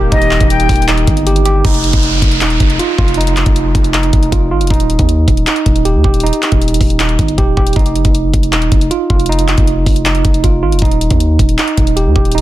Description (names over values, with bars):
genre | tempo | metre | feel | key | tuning
hip hop, trap | 157 BPM | 4/4 | half-time | unclear | A4 = 440 Hz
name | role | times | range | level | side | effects
warm analog pad | sustained chords | 0.0-1.6 s | Eb3 to G4 | -24 LUFS | left 2 dB | chorus
mellow tine electric piano | arpeggios | 0.0-12.4 s | Eb4 to G4 | -16 LUFS | right 3 dB | medium stereo tremolo, digital delay
long sustained 808-style bass | bass | 0.0-12.4 s | Eb1 to Eb2 | -14 LUFS | equal | none
silver concert flute | second line | 0.1-0.9 s | Eb5 to G5 | -16 LUFS | left 4 dB | digital delay
trap drum kit | drums | 0.1-12.4 s | handclaps, hi-hat, kick drum | -13 LUFS | equal | none
downlifter | sound effects | 1.6-4.7 s | none | -21 LUFS | right 2 dB | none
room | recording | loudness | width
little or no reverb | dense, heavily limited modern master | -10 LUFS | side -14 dB against mid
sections
0.0-1.6 A section; 1.6-12.4 B section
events
none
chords
0.0 Eb; 1.6 F7(no3); 4.7 Eb; 7.8 F7(no3); 10.8 Eb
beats
| 0.12 0.50 0.88 1.26 | 1.65 2.03 2.41 2.79 | 3.18 3.56 3.94 4.32 | 4.71 5.09 5.47 5.85 | 6.23 6.62 7.00 7.38 | 7.76 8.14 8.53 8.91 | 9.29 9.67 10.05 10.44 | 10.82 11.20 11.58 11.97 | 12.35